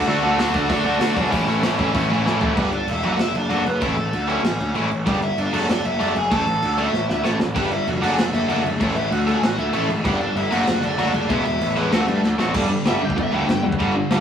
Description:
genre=punk rock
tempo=192 BPM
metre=4/4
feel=straight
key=A major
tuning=A4 = 438 Hz
part: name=biting overdriven guitar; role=riff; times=0.0-14.2 s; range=G2 to B4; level=-22 LUFS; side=equal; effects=none
part: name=distorted electric guitar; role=riff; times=0.0-2.6, 7.5-14.2 s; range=E2 to D4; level=-26 LUFS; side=left 1 dB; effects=distortion
part: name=fuzz picked electric bass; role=bass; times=0.0-14.2 s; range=E1 to G2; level=-23 LUFS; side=equal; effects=overdrive
part: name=smooth overdriven lead guitar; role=melody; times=0.1-13.6 s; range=A3 to A5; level=-25 LUFS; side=equal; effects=none
part: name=big rock drum kit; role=drums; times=0.4-14.2 s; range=crash cymbal, hi-hat, kick drum, snare drum, toms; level=-26 LUFS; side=equal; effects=none
room=moderate small room reverb, RT60 0.5 s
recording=rough rehearsal-room recording, warm saturation, small room ambience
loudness=-18 LUFS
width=side -8 dB against mid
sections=0.0-2.6 A section; 2.6-12.5 B section; 12.5-14.2 C section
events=drum fill 2.3-2.6, 6.9-7.6, 12.2-12.5; half time 2.6-12.5; lead electric guitar solo 12.5-14.2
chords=0.0 D; 1.3 A; 2.6 G; 3.0 D/F#; 3.8 A; 5.1 G; 5.5 D/F#; 6.3 A; 7.6 G; 8.0 D/F#; 8.8 A; 10.1 G; 10.5 D/F#; 11.3 E; 11.9 D7; 12.5 G5

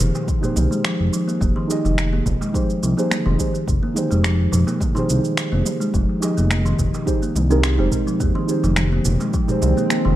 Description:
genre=organic downtempo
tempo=106 BPM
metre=4/4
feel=swing 53% on 16ths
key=F minor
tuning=A4 = 440 Hz
part: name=muted felt-like synth keys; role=accompaniment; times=0.0-10.2 s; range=Eb4 to Eb5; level=-24 LUFS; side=right 3 dB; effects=chorus, sidechain pumping, low-pass filter, ping-pong delay
part: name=kalimba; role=arpeggios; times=0.0-10.2 s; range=Eb3 to C4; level=-23 LUFS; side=left 1 dB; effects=ping-pong delay
part: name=smooth synth bass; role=bass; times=0.0-10.2 s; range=F1 to C2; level=-19 LUFS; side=equal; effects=tube saturation, sidechain pumping
part: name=organic electronic drum kit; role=drums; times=0.0-10.0 s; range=finger snaps, shaker, toms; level=-26 LUFS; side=right 1 dB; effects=none
part: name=darbuka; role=percussion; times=0.1-10.2 s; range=none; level=-30 LUFS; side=right 2 dB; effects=none
part: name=electronic kick drum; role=drums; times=0.3-9.5 s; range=none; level=-23 LUFS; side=equal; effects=none
part: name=bowed-like drone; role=sustained chords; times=9.0-10.2 s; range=Eb3 to F4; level=-28 LUFS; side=right 1 dB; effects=built-in reverb, sidechain pumping
room=little or no reverb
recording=none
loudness=-17 LUFS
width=side -14 dB against mid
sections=0.0-10.2 A section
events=none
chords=0.0 Fm7

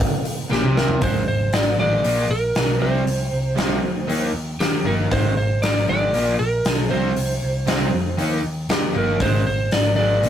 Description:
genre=hard rock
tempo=117 BPM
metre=4/4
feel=straight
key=unclear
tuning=A4 = 444 Hz
part: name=big rock drum kit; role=drums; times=0.0-10.3 s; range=hi-hat, kick drum, snare drum, toms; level=-23 LUFS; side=equal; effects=none
part: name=lightly driven lead guitar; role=melody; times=0.5-10.3 s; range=G4 to D5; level=-23 LUFS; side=equal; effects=none
part: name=distorted electric guitar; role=riff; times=0.5-10.3 s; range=Ab2 to Eb4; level=-30 LUFS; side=left 4 dB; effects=overdrive
part: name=overdriven semi-hollow guitar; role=riff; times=0.5-10.3 s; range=Ab2 to Eb4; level=-24 LUFS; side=right 2 dB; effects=none
part: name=picked electric bass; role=bass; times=0.5-10.3 s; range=G1 to F2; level=-24 LUFS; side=equal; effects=none
room=moderate booth ambience, RT60 0.2 s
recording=rough rehearsal-room recording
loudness=-18 LUFS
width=side -10 dB against mid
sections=0.0-1.0 A section; 1.0-10.3 B section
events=drum fill 0.5-1.0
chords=0.0 C5; 1.0 Ab5; 2.0 Bb5; 2.8 C5; 4.1 Eb; 5.1 Ab5; 6.1 Bb5; 6.9 C5; 8.2 Eb; 9.2 Ab5

